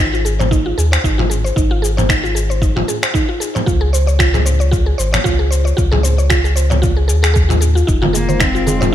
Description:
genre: organic downtempo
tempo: 114 BPM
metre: 4/4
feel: swing 56% on 16ths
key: unclear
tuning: A4 = 439 Hz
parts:
  - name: mallet-like synth pluck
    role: arpeggios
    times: 0.0-8.9 s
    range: Eb4 to Db5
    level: -20 LUFS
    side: equal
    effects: chorus, ping-pong delay
  - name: warm sub bass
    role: bass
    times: 0.0-8.9 s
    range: F1 to Eb2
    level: -15 LUFS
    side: equal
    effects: none
  - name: dusty soul sampler-style drum kit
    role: drums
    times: 0.0-8.9 s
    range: finger snaps, shaker, toms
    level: -19 LUFS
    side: equal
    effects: overdrive, gated reverb
  - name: electronic kick drum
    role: drums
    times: 0.5-8.5 s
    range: none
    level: -18 LUFS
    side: equal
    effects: overdrive
  - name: warm analog pad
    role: sustained chords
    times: 7.9-8.9 s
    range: Eb3 to F4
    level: -22 LUFS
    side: equal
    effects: chorus, sidechain pumping
  - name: darbuka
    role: percussion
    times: 8.0-8.9 s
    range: none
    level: -21 LUFS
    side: right 4 dB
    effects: none
  - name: rich cello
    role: melody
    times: 8.2-8.9 s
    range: Bb3 to C4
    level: -20 LUFS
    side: left 2 dB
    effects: none
room: light reverb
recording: bright 1980s-style digital production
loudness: -12 LUFS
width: side -11 dB against mid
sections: 0.0-8.9 A section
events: none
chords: 0.0 Ab6; 3.7 Dbmaj7; 7.9 Fm7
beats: 0.51 1.04 | 1.57 2.09 2.62 3.15 | 3.67 4.20 4.72 5.25 | 5.78 6.30 6.83 7.36 | 7.88 8.41 8.93

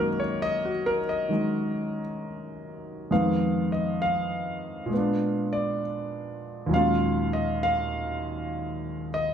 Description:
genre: solo jazz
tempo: 66 BPM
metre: 4/4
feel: swing 68% on 8ths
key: unclear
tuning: A4 = 443 Hz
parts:
  - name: warm concert grand piano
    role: solo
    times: 0.0-9.3 s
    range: Eb2 to F5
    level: -25 LUFS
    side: equal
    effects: none
room: moderate large studio reverb, RT60 0.9 s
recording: band playing live in one room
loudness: -25 LUFS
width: side -8 dB against mid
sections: 0.0-9.3 A section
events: grand piano solo 0.0-9.3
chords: 0.0 Gb69; 3.1 Fm7b5; 4.9 Bb7b9; 6.7 Ebm11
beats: 0.40 1.30 2.20 | 3.10 4.01 4.91 5.81 | 6.71 7.61 8.52

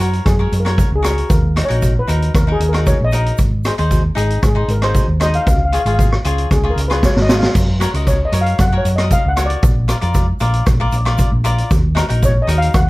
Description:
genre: calypso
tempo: 115 BPM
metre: 4/4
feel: straight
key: F# major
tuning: A4 = 440 Hz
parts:
  - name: steel pan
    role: melody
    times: 0.0-12.9 s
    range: F#4 to F#5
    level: -21 LUFS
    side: left 1 dB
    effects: none
  - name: cavaquinho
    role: accompaniment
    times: 0.0-12.7 s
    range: D#4 to D#5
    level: -23 LUFS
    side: left 2 dB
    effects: none
  - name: hollow-body short-scale fingered electric bass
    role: bass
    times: 0.0-12.9 s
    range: G#1 to F#2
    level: -17 LUFS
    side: equal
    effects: none
  - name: street-band drum kit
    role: drums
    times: 0.0-12.9 s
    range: crash cymbal, hi-hat, kick drum, rim click, snare drum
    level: -17 LUFS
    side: equal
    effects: none
  - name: egg shaker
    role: percussion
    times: 0.0-12.9 s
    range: none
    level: -35 LUFS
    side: right 5 dB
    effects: none
room: light reverb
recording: dark, warm production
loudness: -13 LUFS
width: side -20 dB against mid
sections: 0.0-12.9 A section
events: steel pan solo 0.0-12.9; drum fill 7.0-7.6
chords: 0.0 F#; 1.3 D#m; 3.4 G#; 5.5 C#; 7.6 F#; 9.6 A#; 11.7 D#m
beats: 0.26 0.78 | 1.30 1.82 2.35 2.87 | 3.39 3.91 4.43 4.95 | 5.47 5.99 6.51 7.03 | 7.55 8.07 8.59 9.11 | 9.63 10.15 10.67 11.19 | 11.71 12.23 12.74

